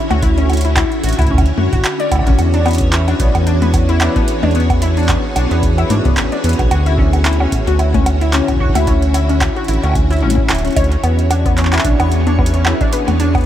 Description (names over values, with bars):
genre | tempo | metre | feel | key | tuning
IDM | 111 BPM | 4/4 | swing 56% on 16ths | D lydian | A4 = 440 Hz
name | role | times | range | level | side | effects
soft string machine | sustained chords | 0.0-13.5 s | D3 to C#5 | -21 LUFS | equal | ensemble chorus
warbly dusty pluck | arpeggios | 0.1-13.4 s | B3 to D5 | -19 LUFS | left 3 dB | analog chorus, analog delay
round analog bass | bass | 0.1-13.5 s | D1 to G#2 | -15 LUFS | equal | none
booming analog drum machine | drums | 0.1-13.5 s | bongos, handclaps, hi-hat, toms | -21 LUFS | equal | tape echo
electronic kick drum | drums | 0.2-13.4 s | none | -18 LUFS | equal | none
backwards swelling texture | texture | 11.8-13.5 s | C#4 to C#5 | -29 LUFS | right 2 dB | built-in reverb
room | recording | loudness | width
light reverb, digital ambience | echo-heavy mix | -12 LUFS | side -11 dB against mid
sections
0.0-13.5 A section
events
none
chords
0.0 Dmaj9; 2.4 E13; 6.7 Dmaj9; 11.0 E13